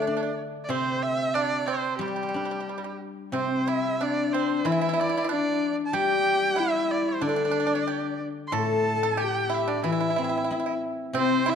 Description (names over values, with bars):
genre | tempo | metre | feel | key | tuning
chinese traditional, Chinese chamber ensemble | 93 BPM | 2/4 | rubato | G zhi mode | A4 = 440 Hz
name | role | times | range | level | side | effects
clear erhu | melody | 0.0-11.6 s | G4 to C6 | -28 LUFS | right 2 dB | none
pipa | second line | 0.0-11.5 s | G3 to A4 | -31 LUFS | right 7 dB | none
guzheng | accompaniment | 0.0-11.6 s | A2 to E4 | -29 LUFS | left 2 dB | none
dark horsehead fiddle | second line | 3.3-11.6 s | C4 to A4 | -28 LUFS | left 6 dB | none
room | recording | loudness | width
moderate concert hall reverb, RT60 1.8 s | dark, warm production | -24 LUFS | side -7 dB against mid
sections
0.0-3.3 A section; 3.3-11.6 B section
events
none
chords
none